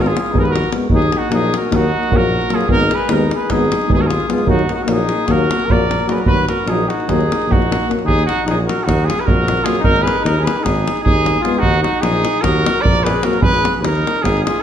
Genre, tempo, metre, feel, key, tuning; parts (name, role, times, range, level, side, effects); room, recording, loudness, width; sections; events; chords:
balkan folk, Balkan brass band; 302 BPM (eighths); 9/8; straight; Eb minor; A4 = 438 Hz
warm trumpet; melody; 0.0-14.6 s; Gb4 to D5; -19 LUFS; right 2 dB
dark trumpet; second line; 0.0-14.6 s; Eb4 to Bb4; -22 LUFS; left 5 dB
dark euphonium; accompaniment; 0.0-13.4 s; Gb3 to Ab3; -25 LUFS; right 6 dB
mellow euphonium; accompaniment; 0.0-13.4 s; Bb3 to Cb4; -22 LUFS; left 6 dB
mellow tuba; bass; 0.0-14.5 s; Ab1 to Eb2; -20 LUFS; equal
davul; percussion; 0.1-14.6 s; -19 LUFS; equal
wet recital hall reverb, RT60 1.5 s; -13 LUFS; side -9 dB against mid
0.0-8.0 A section; 8.0-14.6 A section
0.0 Abm; 0.9 Ebm; 2.7 Abm; 4.5 Ebm; 9.8 Abm; 11.6 Ebm; 13.4 Abm